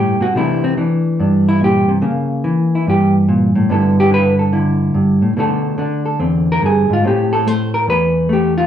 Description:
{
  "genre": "solo jazz",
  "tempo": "144 BPM",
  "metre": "4/4",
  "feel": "swing 65% on 8ths",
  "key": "unclear",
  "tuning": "A4 = 440 Hz",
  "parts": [
    { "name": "hollow-body jazz guitar", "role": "solo", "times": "0.0-8.7 s", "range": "E2 to C5", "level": "-13 LUFS", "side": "equal", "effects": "none" }
  ],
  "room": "wet large studio reverb, RT60 0.8 s",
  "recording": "band playing live in one room",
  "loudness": "-13 LUFS",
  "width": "side -10 dB against mid",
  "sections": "0.0-8.7 A section",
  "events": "hollow-body jazz guitar solo 0.0-8.7",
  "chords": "0.4 C13; 2.0 C#dim7; 3.7 G69; 5.4 Bm7; 6.2 E7alt; 7.0 Am",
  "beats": "| 0.35 0.77 1.19 1.61 | 2.03 2.44 2.86 3.28 | 3.70 4.12 4.54 4.95 | 5.37 5.79 6.21 6.63 | 7.04 7.46 7.88 8.30"
}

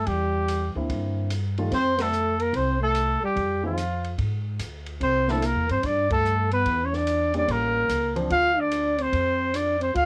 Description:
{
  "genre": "jazz, small-group swing and bop",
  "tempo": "146 BPM",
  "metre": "4/4",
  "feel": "swing 65% on 8ths",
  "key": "C mixolydian",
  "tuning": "A4 = 442 Hz",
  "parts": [
    { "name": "warm trumpet", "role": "melody", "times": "0.0-10.1 s", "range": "F4 to F5", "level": "-27 LUFS", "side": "equal", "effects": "cassette tape" },
    { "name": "breathy trombone", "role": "second line", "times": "0.0-10.1 s", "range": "F3 to F4", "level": "-30 LUFS", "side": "equal", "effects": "cassette tape" },
    { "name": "upright bass", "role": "bass", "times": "0.0-10.1 s", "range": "A1 to Ab2", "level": "-31 LUFS", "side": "equal", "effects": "none" },
    { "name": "open jazz drum kit", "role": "drums", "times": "0.1-10.1 s", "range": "hi-hat, kick drum, ride cymbal, snare drum", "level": "-39 LUFS", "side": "equal", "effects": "cassette tape" },
    { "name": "warm grand piano", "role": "accompaniment", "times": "0.8-8.3 s", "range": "D3 to C5", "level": "-33 LUFS", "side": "equal", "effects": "cassette tape" }
  ],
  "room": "light reverb",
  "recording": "home recording on cassette",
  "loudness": "-24 LUFS",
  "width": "mono",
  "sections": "0.0-10.1 A section",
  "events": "band accent 1.9, 6.0",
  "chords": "0.0 C9; 1.7 F; 3.4 Fm; 5.0 C9; 6.7 Em7; 7.5 A7b9; 8.3 Dm7",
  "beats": "| 0.08 0.49 0.90 1.31 | 1.72 2.13 2.54 2.96 | 3.37 3.78 4.19 4.60 | 5.01 5.43 5.84 6.25 | 6.66 7.08 7.49 7.90 | 8.31 8.72 9.13 9.54 | 9.96"
}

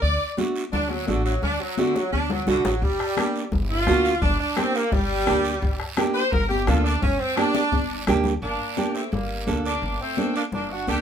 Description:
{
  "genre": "latin, cumbia",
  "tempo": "171 BPM",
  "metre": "4/4",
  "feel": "straight",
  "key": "G harmonic minor",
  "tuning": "A4 = 440 Hz",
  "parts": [
    { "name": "clear saxophone section", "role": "melody", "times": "0.0-11.0 s", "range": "D3 to D5", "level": "-25 LUFS", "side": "right 1 dB", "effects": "none" },
    { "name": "upright bass", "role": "bass", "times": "0.0-11.0 s", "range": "G1 to D2", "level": "-27 LUFS", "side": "equal", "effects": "none" },
    { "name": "guiro", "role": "percussion", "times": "0.0-11.0 s", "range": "none", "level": "-38 LUFS", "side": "right 6 dB", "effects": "none" },
    { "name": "nylon-string guitar", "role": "accompaniment", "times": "0.4-11.0 s", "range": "A3 to A4", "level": "-24 LUFS", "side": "right 3 dB", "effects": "none" },
    { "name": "congas", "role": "percussion", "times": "0.4-11.0 s", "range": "none", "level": "-30 LUFS", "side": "left 6 dB", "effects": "none" },
    { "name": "bombo", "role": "percussion", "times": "2.8-8.2 s", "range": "none", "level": "-26 LUFS", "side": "left 1 dB", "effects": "none" }
  ],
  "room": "moderate studio ambience, RT60 0.5 s",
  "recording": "minimal, uncompressed stereo recording",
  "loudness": "-21 LUFS",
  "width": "side -8 dB against mid",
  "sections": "0.0-8.4 A section; 8.4-11.0 B section",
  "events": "saxophone section solo 0.0-8.4; drum fill 1.8-2.8, 7.6-8.4",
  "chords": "0.0 D; 2.8 Gm",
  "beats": "| 0.03 0.38 0.73 1.08 | 1.43 1.78 2.13 2.48 | 2.83 3.18 3.53 3.88 | 4.23 4.58 4.93 5.28 | 5.63 5.98 6.33 6.68 | 7.03 7.38 7.73 8.08 | 8.43 8.78 9.13 9.48 | 9.83 10.18 10.53 10.88"
}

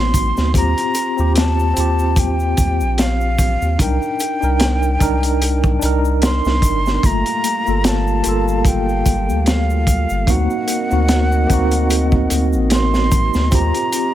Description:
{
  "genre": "trip hop",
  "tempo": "74 BPM",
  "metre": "4/4",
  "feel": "swing 56% on 16ths",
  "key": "G minor",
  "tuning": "A4 = 440 Hz",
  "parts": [
    { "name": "breathy mellow silver concert flute", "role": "melody", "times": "0.0-14.1 s", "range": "F5 to C6", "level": "-22 LUFS", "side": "left 1 dB", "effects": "tape echo" },
    { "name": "bright tine electric piano", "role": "accompaniment", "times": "0.0-14.1 s", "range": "A3 to Bb4", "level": "-21 LUFS", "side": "equal", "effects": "medium stereo tremolo, vintage 12-bit sampler grit" },
    { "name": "round analog bass", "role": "bass", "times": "0.0-13.7 s", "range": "G1 to Eb2", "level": "-18 LUFS", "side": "equal", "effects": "tube saturation" },
    { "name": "crunchy breakbeat drum kit", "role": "drums", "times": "0.1-14.1 s", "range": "hi-hat, kick drum, snare drum", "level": "-18 LUFS", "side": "equal", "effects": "none" },
    { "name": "egg shaker", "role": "percussion", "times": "0.1-14.1 s", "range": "none", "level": "-32 LUFS", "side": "equal", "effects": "none" },
    { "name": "dark analog pad", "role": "sustained chords", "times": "7.0-14.1 s", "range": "G3 to F5", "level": "-25 LUFS", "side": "right 2 dB", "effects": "chorus" }
  ],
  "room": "studio reverb",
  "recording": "none",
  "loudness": "-14 LUFS",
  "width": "side -12 dB against mid",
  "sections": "0.0-14.1 A section",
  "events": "none",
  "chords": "0.0 D7b9b13; 0.6 Eb69; 3.8 Cm9; 7.0 Gm9; 10.3 D7b9b13; 13.5 Eb69",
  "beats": "| 0.55 1.36 2.17 2.98 | 3.79 4.60 5.42 6.22 | 7.04 7.85 8.66 9.47 | 10.28 11.09 11.90 12.71 | 13.52"
}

